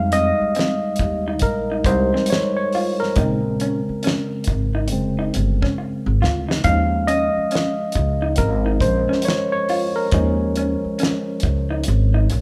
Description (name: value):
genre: R&B, neo-soul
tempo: 69 BPM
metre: 4/4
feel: swing 62% on 16ths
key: Bb dorian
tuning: A4 = 440 Hz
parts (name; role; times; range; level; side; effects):
- tine electric piano; accompaniment; 0.0-12.4 s; Db3 to F5; -23 LUFS; equal; none
- upright bass; bass; 0.0-12.4 s; F1 to F2; -24 LUFS; equal; none
- electric guitar through a small old amp; second line; 0.1-12.3 s; C4 to F4; -29 LUFS; equal; none
- damped 70s drum kit; drums; 0.1-12.4 s; hi-hat, kick drum, snare drum; -25 LUFS; equal; none
room: moderate large studio reverb, RT60 1.2 s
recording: band playing live in one room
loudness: -20 LUFS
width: mono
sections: 0.0-12.4 A section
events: tine electric piano solo 0.0-12.4; drum fill 5.8-6.6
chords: 0.0 Fm9; 3.2 Bbm9; 6.6 Eb7sus4